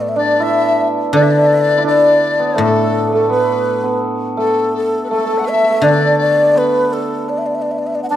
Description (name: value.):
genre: chinese traditional, Chinese chamber ensemble.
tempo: 83 BPM.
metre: 4/4.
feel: straight.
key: unclear.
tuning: A4 = 441 Hz.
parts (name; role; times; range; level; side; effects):
breathy xiao; melody; 0.0-8.2 s; A4 to A5; -16 LUFS; equal; none.
hammered dulcimer; second line; 0.0-8.2 s; F#3 to E4; -18 LUFS; right 2 dB; none.
guzheng; accompaniment; 0.0-8.0 s; A2 to D3; -20 LUFS; left 2 dB; none.
large dizi; second line; 0.2-8.2 s; A4 to F#5; -20 LUFS; left 5 dB; none.
room: light reverb.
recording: dark, warm production.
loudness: -12 LUFS.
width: side -11 dB against mid.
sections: 0.0-8.2 A section.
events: none.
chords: none.